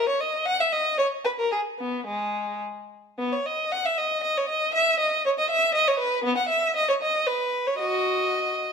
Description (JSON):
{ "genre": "classical, baroque-style suite movement for unaccompanied violin", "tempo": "105-121 BPM", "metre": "3/4", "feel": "rubato", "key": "G# minor", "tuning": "A4 = 440 Hz", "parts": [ { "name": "rich violin", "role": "solo", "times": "0.0-8.7 s", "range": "G#3 to F#5", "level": "-22 LUFS", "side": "equal", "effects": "none" } ], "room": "wet stone room reverb, RT60 1.1 s", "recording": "minimal, uncompressed stereo recording", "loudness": "-22 LUFS", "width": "side -6 dB against mid", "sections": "0.0-3.2 A section; 3.2-8.7 A section", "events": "none", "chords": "none" }